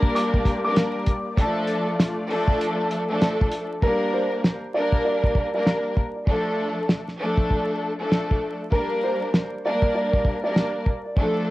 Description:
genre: hip hop, boom-bap hip-hop.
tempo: 98 BPM.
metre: 4/4.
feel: swing 61% on 16ths.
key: unclear.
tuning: A4 = 440 Hz.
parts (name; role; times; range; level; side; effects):
dark upright piano; melody; 0.0-11.1 s; Bb4 to D6; -27 LUFS; right 1 dB; high-pass filter, low-pass filter, cassette tape, plate reverb, tape echo.
warm studio string section; accompaniment; 0.0-11.5 s; F3 to Bb4; -24 LUFS; left 1 dB; cassette tape, high-pass filter, low-pass filter, plate reverb.
warm analog pad; sustained chords; 0.0-3.8 s; A3 to D5; -33 LUFS; left 1 dB; chorus, high-pass filter, low-pass filter, plate reverb.
cloth-damped thuddy drum kit; drums; 0.0-11.3 s; hi-hat, kick drum, snare drum; -21 LUFS; equal; cassette tape.
room: light reverb.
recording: home recording on cassette, vinyl crackle.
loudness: -21 LUFS.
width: side -17 dB against mid.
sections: 0.0-3.8 A section; 3.8-11.5 B section.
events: hi-hats muted 3.8-11.5.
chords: 0.0 Gm; 1.4 Dm; 3.8 Gm; 6.3 Dm; 8.7 Gm.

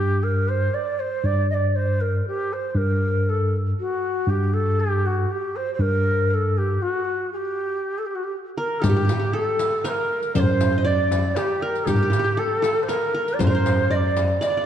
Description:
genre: Arabic maqam ensemble.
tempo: 118 BPM.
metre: 3/4.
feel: straight.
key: G maqam nahawand.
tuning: A4 = 440 Hz.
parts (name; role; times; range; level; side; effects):
breathy ney; melody; 0.0-14.7 s; F#4 to Eb5; -24 LUFS; equal; none.
tine electric piano; bass; 0.0-14.4 s; F#2 to G2; -22 LUFS; equal; medium tremolo.
qanun; second line; 8.6-14.6 s; G4 to Eb5; -27 LUFS; equal; none.
darbuka; percussion; 8.8-14.7 s; none; -26 LUFS; equal; none.
riq; percussion; 8.8-14.5 s; none; -34 LUFS; left 5 dB; none.
room: moderate concert hall reverb, RT60 1.9 s.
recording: dark, warm production.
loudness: -20 LUFS.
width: side -9 dB against mid.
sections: 0.0-8.8 A section; 8.8-14.7 B section.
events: stop 7.3-8.8; drum fill 14.4.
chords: none.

